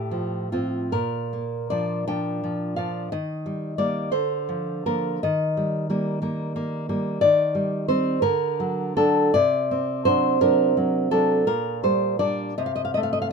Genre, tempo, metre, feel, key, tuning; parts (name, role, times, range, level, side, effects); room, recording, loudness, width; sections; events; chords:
romantic piece for solo classical guitar; 47-63 BPM (dotted quarters); 6/8; rubato; Bb major; A4 = 440 Hz
nylon-string guitar; solo; 0.0-13.3 s; A2 to G5; -21 LUFS; equal
light reverb; minimal, uncompressed stereo recording; -21 LUFS; side -5 dB against mid
0.0-13.3 A section
0.0 F/A; 0.9 Bb; 3.1 Eb; 4.1 Bb/D; 5.2 Eb; 7.2 Cm/Eb; 8.2 D; 9.3 D7/C; 11.5 Gm/Bb; 12.6 Adim/C